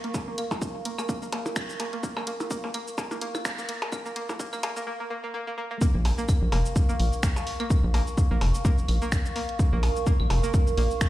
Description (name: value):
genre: minimal techno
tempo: 127 BPM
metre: 4/4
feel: swing 56% on 16ths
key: Bb minor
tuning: A4 = 440 Hz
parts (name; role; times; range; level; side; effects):
- string-like resonator pluck; riff; 0.0-10.8 s; Bb3; -35 LUFS; equal; chorus, sidechain pumping, ping-pong delay
- punchy analog drum machine; drums; 0.0-11.1 s; finger snaps, hi-hat, shaker; -35 LUFS; equal; none
- warbly tape-like pad; texture; 0.0-11.1 s; Bb4 to Db6; -34 LUFS; right 3 dB; chorus, built-in reverb, sidechain pumping
- electronic kick drum; drums; 0.1-11.1 s; none; -24 LUFS; equal; overdrive
- percussion blips and claves; percussion; 0.1-10.4 s; none; -35 LUFS; equal; digital delay
- rubbery square bass; bass; 5.9-10.9 s; F1 to Bb1; -24 LUFS; equal; sidechain pumping
room: light reverb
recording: played on a big sound system in a bare room, large studio reverb, high-pass filter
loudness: -24 LUFS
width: side -15 dB against mid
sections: 0.0-5.8 A section; 5.8-11.1 B section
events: build-up 0.0-5.8; filter sweep on synth pluck 0.0-5.8; drop 5.8-11.1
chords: 0.0 Bbm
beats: | 0.14 0.62 1.09 1.56 | 2.03 2.51 2.98 3.45 | 3.92 4.40 4.87 5.34 | 5.81 6.29 6.76 7.23 | 7.70 8.18 8.65 9.12 | 9.59 10.06 10.54 11.01